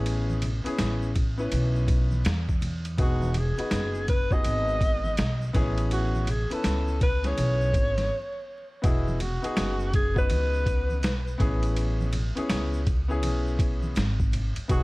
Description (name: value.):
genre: hip hop, jazz-hop.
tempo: 82 BPM.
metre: 4/4.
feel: swing 63% on 16ths.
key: unclear.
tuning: A4 = 441 Hz.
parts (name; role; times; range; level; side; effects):
clear upright piano; accompaniment; 0.0-14.8 s; B3 to D#5; -32 LUFS; left 2 dB; none.
upright bass; bass; 0.0-14.8 s; E1 to E2; -27 LUFS; equal; none.
boom bap sampler-style drum kit; drums; 0.1-14.8 s; hi-hat, kick drum, ride cymbal, snare drum; -28 LUFS; equal; none.
tube shaker and congas; percussion; 0.1-14.8 s; none; -39 LUFS; right 1 dB; none.
breathy alto saxophone; melody; 3.0-14.8 s; E4 to D#5; -30 LUFS; equal; tape echo.
room: small room ambience.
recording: vinyl crackle.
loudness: -23 LUFS.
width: side -22 dB against mid.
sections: 0.0-14.8 A section.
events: break 8.1-8.8.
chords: 0.0 Amaj9; 3.0 Emaj9; 5.5 Amaj9; 8.8 Emaj9; 11.4 Amaj9.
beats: | 0.06 0.79 1.52 2.25 | 2.98 3.72 4.45 5.18 | 5.91 6.64 7.38 8.11 | 8.84 9.57 10.30 11.03 | 11.77 12.50 13.23 13.96 | 14.69.